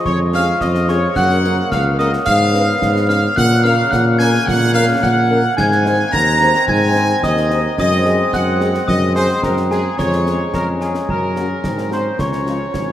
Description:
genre	military-style march for wind band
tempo	109 BPM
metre	2/4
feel	straight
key	Db major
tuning	A4 = 440 Hz
part	glockenspiel with rubber mallets	second line	0.0-12.9 s	Ab5 to Bb6	-22 LUFS	left 2 dB	none
part	warm woodwind section	second line	0.0-12.9 s	Ab4 to Bb5	-22 LUFS	right 1 dB	none
part	clear trombone section	sustained chords	0.0-12.9 s	Db3 to Db4	-24 LUFS	left 1 dB	none
part	clear trumpet section	melody	0.1-12.9 s	Ab4 to Bb5	-21 LUFS	equal	none
part	mellow tuba	bass	0.1-12.9 s	Ab1 to Bb2	-18 LUFS	equal	none
part	concert bass drum, concert snare drum and clash cymbals	drums	0.1-12.9 s	none	-26 LUFS	right 1 dB	none
part	mellow French horn section	accompaniment	0.3-12.6 s	F3 to C5	-27 LUFS	left 2 dB	none
room	wet cathedral reverb, RT60 5.6 s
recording	in a vast, echoing space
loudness	-13 LUFS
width	side -11 dB against mid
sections	0.0-12.9 A section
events	none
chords	0.0 Db/F; 1.2 Gb; 2.3 Db7/Ab; 3.4 Gb/Bb; 5.6 Ab; 7.8 Ab7/Gb; 10.0 Db/F; 11.1 Gb; 11.6 Ab7; 12.2 Db

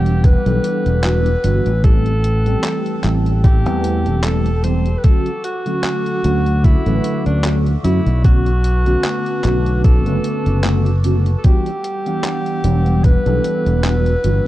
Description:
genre	vaporwave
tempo	75 BPM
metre	4/4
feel	swing 55% on 16ths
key	D major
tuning	A4 = 436 Hz
part	bright alto saxophone	melody	0.0-14.5 s	D4 to C5	-23 LUFS	equal	tape echo
part	mellow tine electric piano	accompaniment	0.0-14.5 s	D3 to F#5	-21 LUFS	equal	ensemble chorus
part	warbly tape-like pad	sustained chords	0.0-14.5 s	G3 to E6	-31 LUFS	left 3 dB	chorus, built-in reverb
part	fingered electric bass	bass	0.0-14.4 s	E1 to F#2	-16 LUFS	equal	tube saturation
part	detuned 8-bit digital drum machine	drums	0.1-14.4 s	handclaps, hi-hat	-27 LUFS	equal	vintage 12-bit sampler grit
part	electronic kick drum	drums	0.2-13.2 s	none	-12 LUFS	equal	vintage 12-bit sampler grit
room	little or no reverb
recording	dark, warm production, cassette tape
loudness	-14 LUFS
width	side -15 dB against mid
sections	0.0-14.5 A section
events	none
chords	0.0 Em9; 1.8 Am7; 5.0 Dmaj7; 8.2 Bm9; 11.4 Em9

